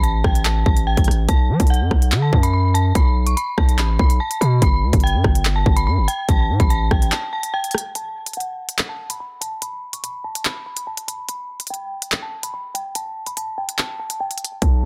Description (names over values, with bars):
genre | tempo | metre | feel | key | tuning
hip hop, drill | 144 BPM | 4/4 | half-time | unclear | A4 = 440 Hz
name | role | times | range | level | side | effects
dark detuned synth bell | melody | 0.0-14.9 s | F#5 to C#6 | -28 LUFS | equal | chorus, tremolo, low-pass filter, tape echo
hard-hitting 808-style bass | bass | 0.0-7.1, 14.6-14.9 s | G1 to F#3 | -20 LUFS | equal | none
drill drum kit | drums | 0.0-14.7 s | handclaps, hi-hat, kick drum, rim click | -21 LUFS | equal | none
room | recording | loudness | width
little or no reverb | dense, heavily limited modern master | -20 LUFS | mono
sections
0.0-8.0 A section; 8.0-14.9 B section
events
break 7.1-8.0, 8.0-14.6; filter sweep on synth bell 8.0-14.9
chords
0.0 Gsus2/A; 1.3 B7(no3); 4.6 G; 6.3 Gsus2/A; 8.0 N.C.